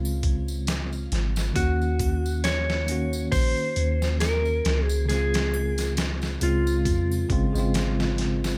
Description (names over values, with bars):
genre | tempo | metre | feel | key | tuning
trip hop | 68 BPM | 4/4 | swing 56% on 16ths | unclear | A4 = 438 Hz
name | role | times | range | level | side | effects
bell-like tine electric piano | accompaniment | 0.0-8.6 s | Db3 to Gb4 | -31 LUFS | equal | harmonic tremolo, vintage 12-bit sampler grit, tape echo
soft 808-style bass | bass | 0.0-8.6 s | Ab1 to F2 | -28 LUFS | equal | none
triangle and tambourine | percussion | 0.1-8.6 s | none | -44 LUFS | equal | none
trip hop sampler-style drum kit | drums | 0.2-8.6 s | hi-hat, kick drum, snare drum | -31 LUFS | equal | none
clean lap steel guitar | melody | 1.6-8.1 s | F4 to Db5 | -31 LUFS | equal | tape echo
room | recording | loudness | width
little or no reverb | none | -25 LUFS | mono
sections
0.0-8.6 A section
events
none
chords
0.0 Dbmaj7; 1.6 Ebm7; 5.1 Dbmaj7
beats
0.68 | 1.56 2.44 3.32 4.21 | 5.09 5.97 6.85 7.74